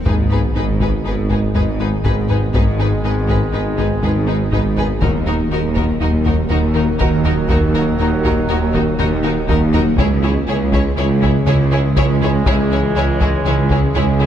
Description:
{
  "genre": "cinematic, hybrid orchestral and electronic film score",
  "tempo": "121 BPM",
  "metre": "5/4",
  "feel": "straight",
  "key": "G# minor",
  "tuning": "A4 = 440 Hz",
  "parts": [
    { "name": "ethereal airy pad", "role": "sustained chords", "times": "0.0-14.3 s", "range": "D#3 to D#5", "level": "-28 LUFS", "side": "equal", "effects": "none" },
    { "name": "dark detuned saw bass", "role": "bass", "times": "0.0-14.3 s", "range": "D#1 to C#2", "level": "-25 LUFS", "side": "left 1 dB", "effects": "none" },
    { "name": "swell and sub drop", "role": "sound effects", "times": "0.0-2.5 s", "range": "none", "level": "-23 LUFS", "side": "left 1 dB", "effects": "none" },
    { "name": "warm symphonic violin section", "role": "melody", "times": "0.1-14.3 s", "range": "A#4 to C#5", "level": "-26 LUFS", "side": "left 4 dB", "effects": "none" },
    { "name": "warm symphonic violin section", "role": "second line", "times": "0.1-14.3 s", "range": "F#4 to G#4", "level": "-29 LUFS", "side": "left 3 dB", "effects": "none" },
    { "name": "rich symphonic viola section", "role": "accompaniment", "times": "0.1-14.3 s", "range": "D#4 to E4", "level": "-28 LUFS", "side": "equal", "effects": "none" },
    { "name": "clear trombone section", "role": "sustained chords", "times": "0.1-14.3 s", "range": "D#3 to G#3", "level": "-29 LUFS", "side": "right 3 dB", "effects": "none" },
    { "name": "mellow French horn section", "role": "sustained chords", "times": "0.1-14.3 s", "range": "A#3 to A#4", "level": "-28 LUFS", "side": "left 4 dB", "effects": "none" },
    { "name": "harp-like synth pluck", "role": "arpeggios", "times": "0.1-14.3 s", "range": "C#3 to D#4", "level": "-28 LUFS", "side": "right 4 dB", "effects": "none" },
    { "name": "rubbery square bass", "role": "riff", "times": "0.1-14.3 s", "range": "C#2 to G#3", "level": "-24 LUFS", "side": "left 3 dB", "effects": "none" },
    { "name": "mellow tuba", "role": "bass", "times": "0.1-14.3 s", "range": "G#1 to D#2", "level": "-23 LUFS", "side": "right 4 dB", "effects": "none" },
    { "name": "rich symphonic cello section", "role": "bass", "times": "0.1-14.3 s", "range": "C#2 to G#2", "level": "-22 LUFS", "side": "right 1 dB", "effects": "none" },
    { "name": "warm studio double bass section", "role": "bass", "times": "0.1-14.3 s", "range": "G#1 to D#2", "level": "-22 LUFS", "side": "right 3 dB", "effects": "none" },
    { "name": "taiko ensemble", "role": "drums", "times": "0.1-14.2 s", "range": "none", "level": "-21 LUFS", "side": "equal", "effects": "none" }
  ],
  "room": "moderate scoring stage reverb, RT60 1.8 s",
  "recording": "none",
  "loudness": "-14 LUFS",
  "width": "side -10 dB against mid",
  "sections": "0.1-14.3 A section",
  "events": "impact 0.1-2.5",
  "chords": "0.1 G#m; 5.0 D#m; 10.0 C#m"
}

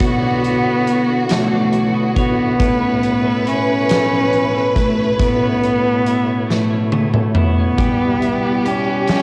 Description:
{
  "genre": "six-eight pop ballad",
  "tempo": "46 BPM (dotted quarters)",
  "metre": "6/8",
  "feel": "straight",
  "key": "unclear",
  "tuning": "A4 = 440 Hz",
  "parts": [
    { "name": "warm cello", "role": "melody", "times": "0.0-9.2 s", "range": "A3 to C#4", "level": "-20 LUFS", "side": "equal", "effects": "cassette tape" },
    { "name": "warm symphonic violin section", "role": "second line", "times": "0.0-9.2 s", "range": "F#4 to B4", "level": "-24 LUFS", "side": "equal", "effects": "none" },
    { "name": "twelve-string electric guitar", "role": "accompaniment", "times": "0.0-9.2 s", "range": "A2 to C#5", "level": "-26 LUFS", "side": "equal", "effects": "double-tracked" },
    { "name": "tonewheel organ", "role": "sustained chords", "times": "0.0-9.2 s", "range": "B2 to C#5", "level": "-27 LUFS", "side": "equal", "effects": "overdrive, chorus vibrato, slow rotary speaker" },
    { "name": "huge arena drum kit", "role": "drums", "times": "0.0-9.2 s", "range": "hi-hat, kick drum, snare drum, toms", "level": "-23 LUFS", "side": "equal", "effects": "cassette tape" }
  ],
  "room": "light reverb, small room ambience",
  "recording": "home recording on cassette",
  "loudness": "-16 LUFS",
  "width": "mono",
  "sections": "0.0-9.2 A section",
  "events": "drum fill 6.5-7.8",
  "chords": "0.0 Bmadd9; 2.6 Aadd9; 7.8 Em"
}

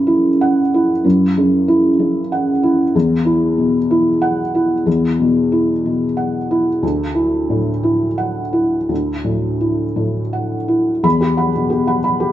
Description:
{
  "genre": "neoclassical minimalist piano",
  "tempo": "55-64 BPM (dotted quarters)",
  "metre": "6/8",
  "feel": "rubato",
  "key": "E dorian",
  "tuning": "A4 = 440 Hz",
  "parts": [
    { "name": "felt-muted upright piano", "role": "solo", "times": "0.0-12.3 s", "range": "D2 to B5", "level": "-14 LUFS", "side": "equal", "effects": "none" }
  ],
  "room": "moderate studio reverb, RT60 0.8 s",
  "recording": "band playing live in one room, nothing above 8.0 kHz",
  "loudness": "-14 LUFS",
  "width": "side -12 dB against mid",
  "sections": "0.0-11.0 A section; 11.0-12.3 A section",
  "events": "none",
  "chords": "0.0 F#5; 2.9 Esus2; 6.8 Dadd9; 11.0 Emadd9"
}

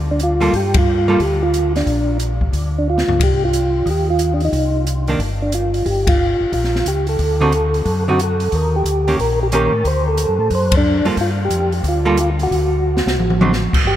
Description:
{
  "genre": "soul jazz organ trio",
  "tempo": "180 BPM",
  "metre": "4/4",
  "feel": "swing 64% on 8ths",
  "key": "G minor",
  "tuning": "A4 = 440 Hz",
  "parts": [
    { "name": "tonewheel organ", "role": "bass", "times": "0.0-14.0 s", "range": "G1 to A2", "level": "-19 LUFS", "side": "left 1 dB", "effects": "overdrive, chorus vibrato, slow rotary speaker" },
    { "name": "percussive tonewheel organ", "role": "melody", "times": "0.1-14.0 s", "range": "D4 to C5", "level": "-18 LUFS", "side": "equal", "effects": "slow rotary speaker, chorus vibrato" },
    { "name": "open jazz drum kit", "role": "drums", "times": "0.2-13.9 s", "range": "crash cymbal, hi-hat, kick drum, ride cymbal, snare drum, toms", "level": "-21 LUFS", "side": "equal", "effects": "none" },
    { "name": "archtop guitar, miked and amplified", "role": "accompaniment", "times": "0.4-1.2, 5.1-5.2, 7.4-13.5 s", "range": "D3 to A4", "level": "-23 LUFS", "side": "right 2 dB", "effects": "none" }
  ],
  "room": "moderate cathedral reverb, RT60 5.4 s",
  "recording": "in a vast, echoing space",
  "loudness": "-14 LUFS",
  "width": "side -12 dB against mid",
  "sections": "0.0-13.8 A section",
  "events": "band accent 0.7, 6.0, 10.7; drum fill 2.9-3.2, 12.8-13.5",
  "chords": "0.0 Gm7; 3.2 Cm; 5.9 Gm7; 7.2 D7b9; 8.5 Eb7; 9.9 D; 11.2 G7(no3); 12.5 D7"
}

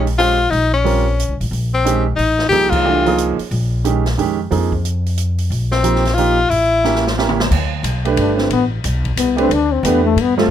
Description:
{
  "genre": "modal jazz",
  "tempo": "180 BPM",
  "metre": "3/4",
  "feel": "swing 63% on 8ths",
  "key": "Bb dorian",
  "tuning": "A4 = 444 Hz",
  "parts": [
    { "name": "clear tenor saxophone", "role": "melody", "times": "0.0-3.4, 5.7-7.2 s", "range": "C4 to G4", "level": "-16 LUFS", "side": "left 4 dB", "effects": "none" },
    { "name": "warm concert grand piano", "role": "accompaniment", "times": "0.0-10.5 s", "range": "Eb3 to C5", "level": "-18 LUFS", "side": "right 8 dB", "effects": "none" },
    { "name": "upright bass", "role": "bass", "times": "0.0-10.5 s", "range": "G1 to G2", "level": "-19 LUFS", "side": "equal", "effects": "none" },
    { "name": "open jazz drum kit", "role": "drums", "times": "0.1-10.4 s", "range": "crash cymbal, hi-hat, kick drum, ride cymbal, snare drum, toms", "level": "-24 LUFS", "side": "right 1 dB", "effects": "none" },
    { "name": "mellow trombone", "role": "second line", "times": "8.2-10.5 s", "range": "A3 to D4", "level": "-16 LUFS", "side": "left 7 dB", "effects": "none" }
  ],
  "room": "light reverb",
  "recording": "none",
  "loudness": "-14 LUFS",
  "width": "side -10 dB against mid",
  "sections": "0.0-7.5 A section; 7.5-10.5 B section",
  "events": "band accent 2.7; drum fill 6.8-7.5; trombone solo 7.5-10.5",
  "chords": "0.0 Bbm9; 1.5 Fm7; 3.5 Bbm7; 5.5 F5/Bb; 6.5 A7b9; 7.5 D5"
}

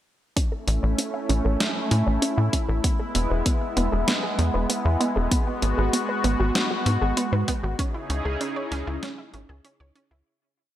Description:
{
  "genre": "synthwave",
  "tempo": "97 BPM",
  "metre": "4/4",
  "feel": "straight",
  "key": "C# minor",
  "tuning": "A4 = 440 Hz",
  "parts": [
    { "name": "lush unison pad", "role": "sustained chords", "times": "0.4-10.2 s", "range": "C#3 to G#4", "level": "-27 LUFS", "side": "equal", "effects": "chorus, phaser, sidechain pumping" },
    { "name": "analog pluck", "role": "arpeggios", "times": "0.4-10.3 s", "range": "B3 to E5", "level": "-30 LUFS", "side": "right 2 dB", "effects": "chorus, cassette tape, tape echo" },
    { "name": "clean 12-bit digital drum machine", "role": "drums", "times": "0.4-10.1 s", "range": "hi-hat, snare drum", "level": "-27 LUFS", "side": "equal", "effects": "gated reverb" },
    { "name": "electronic kick drum", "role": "drums", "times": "0.4-7.9 s", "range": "none", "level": "-25 LUFS", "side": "equal", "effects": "none" },
    { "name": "tight sequencer bass", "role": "bass", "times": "0.7-10.2 s", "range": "E1 to A2", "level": "-23 LUFS", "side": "equal", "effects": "none" }
  ],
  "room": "light reverb",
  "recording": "none",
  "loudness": "-22 LUFS",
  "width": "side -12 dB against mid",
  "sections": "0.4-10.3 verse",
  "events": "filter sweep on synth arpeggio sound 0.4-10.3; fade-out 7.0-10.3",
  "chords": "0.4 A; 2.8 E; 5.3 G#m7; 7.8 C#madd9"
}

